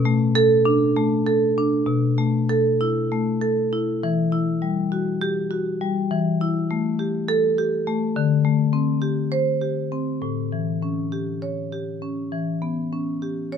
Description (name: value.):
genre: classical, contemporary piece for solo marimba.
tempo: 202 BPM (eighths).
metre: 7/8.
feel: straight.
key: E dorian.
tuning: A4 = 440 Hz.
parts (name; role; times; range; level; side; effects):
marimba with medium hard mallets; solo; 0.0-13.6 s; A2 to C#5; -20 LUFS; left 1 dB; none.
room: light reverb.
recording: close, detailed microphones.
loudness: -20 LUFS.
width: side -7 dB against mid.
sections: 0.0-4.0 A section; 4.0-13.6 B section.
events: none.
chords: 0.0 Bm7; 1.9 B7sus4; 4.0 Emadd9; 6.1 A5/E; 8.2 D7sus4; 10.2 A7; 12.3 Em6.